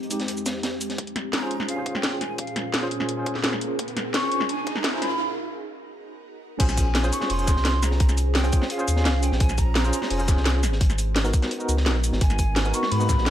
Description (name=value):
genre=liquid drum and bass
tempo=171 BPM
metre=4/4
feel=straight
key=Bb minor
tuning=A4 = 441 Hz
part: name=tine electric piano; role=accompaniment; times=0.0-13.3 s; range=Ab3 to C5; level=-30 LUFS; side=equal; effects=medium tremolo, digital delay
part: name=ethereal airy pad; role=sustained chords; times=0.0-13.3 s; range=F2 to C5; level=-34 LUFS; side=right 1 dB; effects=ensemble chorus, built-in reverb, sidechain pumping
part: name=crunchy breakbeat drum kit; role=drums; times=0.0-1.0, 6.6-13.3 s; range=hi-hat, snare drum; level=-32 LUFS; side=equal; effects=high-pass filter on hats, high-pass filter on snare, high-pass filter on room
part: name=drum and bass drum kit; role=drums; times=0.1-13.3 s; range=cabasa, crash cymbal, hi-hat, snare drum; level=-27 LUFS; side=equal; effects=none
part: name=electronic kick drum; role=drums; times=1.0-13.2 s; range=none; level=-21 LUFS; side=equal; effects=high-pass filter on kick, high-pass filter on room
part: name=riser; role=sound effects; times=2.7-5.2 s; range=none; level=-34 LUFS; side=right 1 dB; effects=none
part: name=breathy mellow jazz flute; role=melody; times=1.3-13.3 s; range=F5 to Db6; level=-30 LUFS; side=equal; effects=digital delay
part: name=warm sub bass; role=bass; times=6.6-13.3 s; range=F1 to Ab2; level=-23 LUFS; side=equal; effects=none
room=light reverb, digital ambience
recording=high-pass filter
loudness=-21 LUFS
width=side -11 dB against mid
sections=1.0-6.6 A section; 6.6-13.3 B section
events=build-up 1.0-6.6; filter sweep on ambient pad 1.0-6.6; filter sweep 1.0-6.6; riser 2.7-5.2; break 5.2-6.6; drop 6.6-13.3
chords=0.0 Fm9; 1.0 Bbm9; 5.0 Abm9; 6.6 Bbm9; 10.6 Abm9